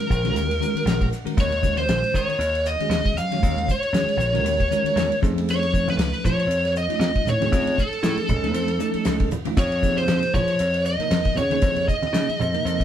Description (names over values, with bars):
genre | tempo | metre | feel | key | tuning
electric jazz fusion | 117 BPM | 4/4 | swing 56% on 16ths | Eb dorian | A4 = 440 Hz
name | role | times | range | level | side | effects
biting lead guitar | melody | 0.0-12.8 s | A4 to F5 | -23 LUFS | equal | overdrive
bell-like tine electric piano | accompaniment | 0.0-12.8 s | C3 to Gb5 | -27 LUFS | equal | fast stereo tremolo
damped 70s drum kit | drums | 0.0-12.8 s | hi-hat, kick drum, ride cymbal, snare drum | -26 LUFS | equal | none
slap bass | bass | 0.1-12.8 s | Bb1 to F3 | -26 LUFS | equal | none
congas | percussion | 5.9-12.5 s | none | -29 LUFS | right 3 dB | none
room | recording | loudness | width
moderate small room reverb, RT60 0.5 s | band playing live in one room | -19 LUFS | side -10 dB against mid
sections
0.0-12.8 A section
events
tine electric piano fill 0.6-1.4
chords
0.0 Ebm7; 5.2 F7alt; 9.6 Bbm11/F